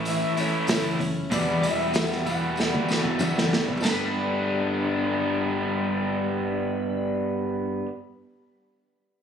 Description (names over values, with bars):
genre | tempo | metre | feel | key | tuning
folk rock and heartland rock | 95 BPM | 4/4 | straight | G major | A4 = 441 Hz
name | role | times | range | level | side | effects
picked steel-string acoustic guitar | accompaniment | 0.0-7.9 s | E2 to A4 | -30 LUFS | left 3 dB | none
raw garage guitar | riff | 0.0-7.9 s | E2 to B4 | -26 LUFS | equal | overdrive
fingered electric bass | bass | 0.0-7.8 s | E1 to A1 | -35 LUFS | right 1 dB | none
electric slide guitar | melody | 0.1-7.1 s | C#5 to B5 | -33 LUFS | left 2 dB | analog delay
unplugged drum kit | drums | 0.1-4.0 s | hi-hat, kick drum, snare drum, splash cymbal, toms | -28 LUFS | right 1 dB | none
tambourine | percussion | 0.1-4.1 s | none | -42 LUFS | right 1 dB | none
room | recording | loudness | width
light reverb, studio ambience | recorded on a phone in the room, studio reverb, compression | -23 LUFS | side -7 dB against mid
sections
0.0-3.8 A section; 3.8-6.4 B section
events
drum fill 2.6-3.8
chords
0.0 A; 1.3 Emadd9; 3.8 Gadd9